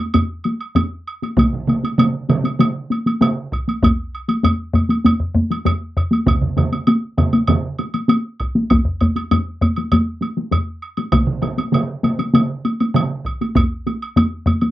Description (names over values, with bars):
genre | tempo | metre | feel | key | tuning
japanese traditional, taiko drum ensemble | 98 BPM | 4/4 | straight | none | none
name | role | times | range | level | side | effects
solo taiko drums | percussion | 0.1-14.6 s | none | -20 LUFS | left 1 dB | none
taiko ensemble | percussion | 0.1-14.7 s | none | -17 LUFS | left 1 dB | none
woodblock | percussion | 0.1-14.7 s | none | -26 LUFS | right 4 dB | none
solo taiko drums | percussion | 1.4-13.7 s | none | -21 LUFS | equal | none
taiko ensemble | percussion | 1.4-13.1 s | none | -21 LUFS | right 3 dB | none
room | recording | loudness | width
wet booth ambience, RT60 0.3 s | home recording on cassette | -16 LUFS | side -14 dB against mid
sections
0.0-14.7 A section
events
none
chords
none